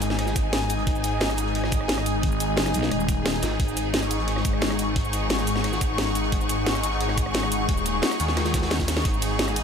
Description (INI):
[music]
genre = dark technical drum and bass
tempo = 176 BPM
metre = 4/4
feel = straight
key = unclear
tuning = A4 = 440 Hz
[part]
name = deep dark ambient pad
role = sustained chords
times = 0.0-9.6 s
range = G#3 to F#5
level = -29 LUFS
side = left 3 dB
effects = chorus, built-in reverb, sidechain pumping
[part]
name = snarling distorted saw bass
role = bass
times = 0.0-9.6 s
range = D#1 to D#2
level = -28 LUFS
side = equal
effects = overdrive
[part]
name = crunchy breakbeat drum kit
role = drums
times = 0.0-9.6 s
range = hi-hat, snare drum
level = -36 LUFS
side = right 1 dB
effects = none
[part]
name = drum and bass drum kit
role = drums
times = 0.0-9.6 s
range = hi-hat, ride cymbal, rim click, shaker, snare drum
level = -28 LUFS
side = equal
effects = studio reverb
[part]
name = clear symphonic string section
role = texture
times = 0.0-9.6 s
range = D#4 to C#6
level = -29 LUFS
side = left 1 dB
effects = sidechain pumping
[part]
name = electronic kick drum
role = drums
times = 0.4-9.1 s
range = none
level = -26 LUFS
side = equal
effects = studio reverb
[part]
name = growling FM bass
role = bass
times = 2.2-3.4 s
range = D#1 to B1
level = -27 LUFS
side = right 1 dB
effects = none
[sound]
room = light reverb, studio reverb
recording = none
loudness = -22 LUFS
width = side -7 dB against mid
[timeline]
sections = 0.0-9.6 A section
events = drum fill 8.9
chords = 0.0 G#5